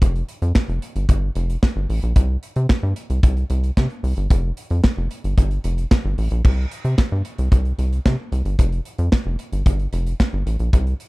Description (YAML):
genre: early-eighties boogie funk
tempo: 112 BPM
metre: 4/4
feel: straight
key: unclear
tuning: A4 = 438 Hz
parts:
  - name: rubbery square bass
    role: bass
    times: 0.0-10.9 s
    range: F1 to C3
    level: -20 LUFS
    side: equal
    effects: none
  - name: modern studio drum kit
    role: drums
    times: 0.0-11.1 s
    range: crash cymbal, hi-hat, kick drum, snare drum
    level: -17 LUFS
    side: equal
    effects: none
room: little or no reverb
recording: none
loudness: -18 LUFS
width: side -22 dB against mid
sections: 0.0-6.4 A section; 6.4-11.1 B section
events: none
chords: none